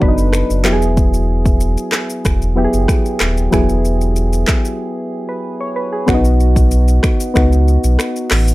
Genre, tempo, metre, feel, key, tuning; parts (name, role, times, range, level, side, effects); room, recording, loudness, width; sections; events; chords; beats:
afrobeats; 94 BPM; 4/4; straight; E major; A4 = 440 Hz
soft electric-piano-like synth keys; accompaniment; 0.0-8.5 s; F#3 to C#5; -18 LUFS; equal; chorus, plate reverb
sub bass with octave; bass; 0.0-8.5 s; D#1 to C#2; -14 LUFS; equal
deep house drum kit; drums; 0.0-8.5 s; finger snaps, handclaps, hi-hat, kick drum, rim click, shaker; -16 LUFS; equal; overdrive
light reverb; -12 LUFS; side -18 dB against mid
0.0-6.1 A section; 6.1-8.5 B section
break 4.8-6.1
0.0 B; 0.7 Eadd9; 6.1 B
0.33 | 0.97 1.61 2.25 2.89 | 3.53 4.16 4.80 5.44 | 6.08 6.72 7.36 7.99